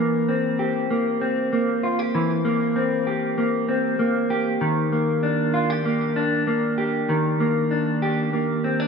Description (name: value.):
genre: dream pop.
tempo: 97 BPM.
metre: 4/4.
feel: straight.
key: unclear.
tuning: A4 = 440 Hz.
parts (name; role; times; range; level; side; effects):
mellow electric guitar; solo; 0.0-8.9 s; Eb3 to G4; -20 LUFS; equal; analog chorus, digital delay.
room: moderate lush hall reverb, RT60 2.5 s.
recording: none.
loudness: -20 LUFS.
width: side -5 dB against mid.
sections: 0.0-8.9 A section.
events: none.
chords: 0.0 C7; 4.6 Ebmaj7.